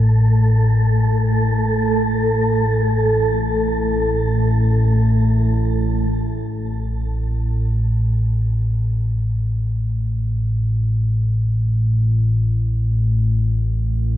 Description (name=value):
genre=dark ambient drone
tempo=free time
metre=none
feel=none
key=unclear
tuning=A4 = 441 Hz
part: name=analog drone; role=drone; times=0.0-14.2 s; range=A1 to A2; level=-17 LUFS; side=equal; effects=lush chorus
part: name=wind-like tuned noise texture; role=texture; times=0.0-6.1 s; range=A3 to A4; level=-22 LUFS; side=right 1 dB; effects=built-in reverb, shimmer reverb
room=wet cathedral reverb, RT60 6.4 s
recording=worn, warbling old tape, cassette tape, warbly pitch drift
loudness=-16 LUFS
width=side -12 dB against mid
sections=0.0-6.1 A section; 6.1-14.2 B section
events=filter sweep on synth drone 0.0-6.1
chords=none